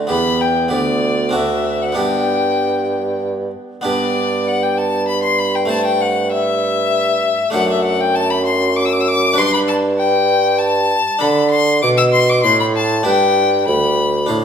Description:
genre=classical, baroque-style sonata movement with continuo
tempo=98 BPM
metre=3/4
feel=straight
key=G major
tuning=A4 = 441 Hz
part: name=harpsichord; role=accompaniment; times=0.0-14.4 s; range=D2 to C5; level=-22 LUFS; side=equal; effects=none
part: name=warm bassoon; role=bass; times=0.0-14.4 s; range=D2 to D3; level=-18 LUFS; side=right 2 dB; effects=none
part: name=clear violin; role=melody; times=0.1-14.3 s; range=D5 to E6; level=-17 LUFS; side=left 4 dB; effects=none
room=wet recital hall reverb, RT60 1.6 s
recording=none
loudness=-14 LUFS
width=side -8 dB against mid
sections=0.0-3.9 A section; 3.9-14.4 B section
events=none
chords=0.1 Em; 0.7 G/D; 1.3 D7; 2.0 G; 5.7 Am7/G; 7.5 D7/F#; 9.4 G; 11.2 D5; 13.1 G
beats=| 0.10 0.72 1.34 | 1.97 2.60 3.23 | 3.86 4.47 5.09 | 5.70 6.32 6.93 | 7.54 8.16 8.77 | 9.38 9.99 10.60 | 11.22 11.83 12.45 | 13.06 13.68 14.29

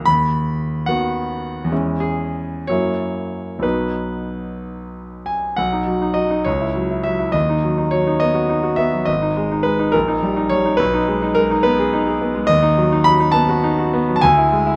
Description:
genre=classical, romantic character piece for solo piano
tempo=59-74 BPM (dotted quarters)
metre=6/8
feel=rubato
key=B major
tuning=A4 = 436 Hz
part: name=bright concert grand piano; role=solo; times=0.0-14.8 s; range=G#1 to B5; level=-18 LUFS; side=equal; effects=none
room=light reverb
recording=close, detailed microphones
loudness=-18 LUFS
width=mono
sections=0.0-5.6 A section; 5.6-14.8 B section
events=none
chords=0.1 B/D#; 1.7 C#m/E; 2.7 F#7; 3.6 B; 6.5 F#5/C#; 7.3 B/D#; 9.1 G#5; 9.9 D#/A#; 10.8 G#m/B; 12.5 B/D#; 14.2 E7/D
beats=| 0.06 0.88 | 1.71 2.68 | 3.63 4.61 | 5.58 6.46 | 7.34 8.21 | 9.08 9.94 | 10.80 11.65 | 12.50 13.35 | 14.22

